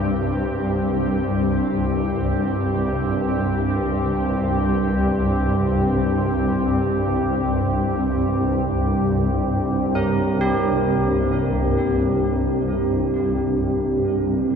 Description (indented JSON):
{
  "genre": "dark ambient drone",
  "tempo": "free time",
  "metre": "none",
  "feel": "none",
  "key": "unclear",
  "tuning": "A4 = 440 Hz",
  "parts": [
    { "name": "deep dark ambient pad", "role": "sustained chords", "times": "0.0-14.6 s", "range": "C4 to G5", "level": "-23 LUFS", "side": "equal", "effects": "chorus, built-in reverb" },
    { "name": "swarming drone", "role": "drone", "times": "0.0-14.6 s", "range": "C2 to G2", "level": "-21 LUFS", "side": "equal", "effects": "built-in reverb" },
    { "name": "old church bells", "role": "arpeggios", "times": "10.0-14.6 s", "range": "G4 to Bb4", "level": "-26 LUFS", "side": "right 3 dB", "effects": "tape echo" }
  ],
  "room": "wet huge ambient reverb, RT60 7.9 s",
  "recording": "in a vast, echoing space, cassette tape",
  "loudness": "-19 LUFS",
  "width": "side -6 dB against mid",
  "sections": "0.0-14.6 A section",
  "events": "fade-in on ambient pad 0.0-14.6",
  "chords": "0.0 C5"
}